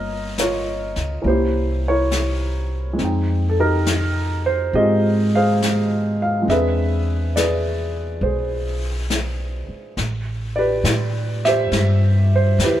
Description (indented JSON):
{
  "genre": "jazz ballad",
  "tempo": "69 BPM",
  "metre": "4/4",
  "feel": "swing 68% on 8ths",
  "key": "unclear",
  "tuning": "A4 = 440 Hz",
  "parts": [
    { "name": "dark grand piano", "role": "accompaniment", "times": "0.0-12.8 s", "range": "Ab3 to G5", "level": "-21 LUFS", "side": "right 1 dB", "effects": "none" },
    { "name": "upright bass", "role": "bass", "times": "0.0-12.8 s", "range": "G1 to A2", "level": "-20 LUFS", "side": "equal", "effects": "none" },
    { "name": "jazz brush drum kit", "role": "drums", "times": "0.4-12.8 s", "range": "brushed snare drum, hi-hat, snare drum", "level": "-27 LUFS", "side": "left 2 dB", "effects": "none" }
  ],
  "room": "light reverb",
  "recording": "heard from further back in the room",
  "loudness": "-17 LUFS",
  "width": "side -12 dB against mid",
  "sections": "0.0-10.0 A section; 10.0-12.8 B section",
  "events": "none",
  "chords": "0.0 Gm7b5; 1.2 C7b9; 3.0 Fm9; 6.5 E7b13; 10.0 Am9",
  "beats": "0.37 1.24 2.12 | 2.99 3.86 4.73 5.60 | 6.47 7.34 8.22 9.09 | 9.97 10.85 11.72 12.59"
}